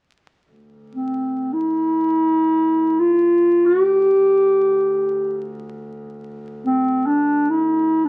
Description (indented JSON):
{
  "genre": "turkish",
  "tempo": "free time",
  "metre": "none",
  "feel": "none",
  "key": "D makam ussak",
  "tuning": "A4 = 437 Hz",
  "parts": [
    { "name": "warm double bass", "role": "drone", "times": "0.5-8.1 s", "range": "D2", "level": "-40 LUFS", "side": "equal", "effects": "none" },
    { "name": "dark clarinet", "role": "melody", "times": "0.9-8.1 s", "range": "C4 to G4", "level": "-18 LUFS", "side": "equal", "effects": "none" }
  ],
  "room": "light reverb",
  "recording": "very old 78 rpm record, vinyl crackle",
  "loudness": "-18 LUFS",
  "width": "mono",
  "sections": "0.5-8.1 A section",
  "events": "none",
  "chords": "none"
}